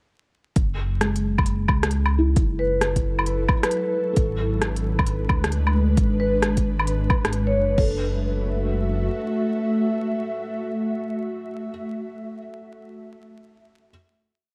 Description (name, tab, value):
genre	future garage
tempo	133 BPM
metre	4/4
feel	swing 65% on 16ths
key	F# minor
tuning	A4 = 440 Hz
part	dark detuned saw bass	bass	0.6-9.1 s	F#1 to D2	-26 LUFS	equal	tube saturation, sidechain pumping
part	organic electronic drum kit	drums	0.6-7.9 s	crash cymbal, kick drum	-24 LUFS	equal	none
part	organic electronic drum kit	drums	0.6-7.4 s	hi-hat, rim click, woodblock	-27 LUFS	equal	none
part	felt-muted upright piano	accompaniment	1.0-13.9 s	G#3 to A4	-33 LUFS	equal	sidechain pumping, analog delay
part	ethereal airy pad	sustained chords	3.1-11.7 s	F#3 to E5	-29 LUFS	equal	ensemble chorus, built-in reverb, sidechain pumping
part	vibraphone with medium hard mallets	melody	2.6-7.8 s	B4 to C#5	-29 LUFS	equal	vintage 12-bit sampler grit, analog delay
room	moderate lush hall reverb, RT60 1.9 s, digital ambience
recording	vinyl crackle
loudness	-23 LUFS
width	mono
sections	0.6-7.8 groove; 7.8-11.4 final chord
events	none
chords	0.6 F#m7; 4.2 G#dim; 7.8 F#m7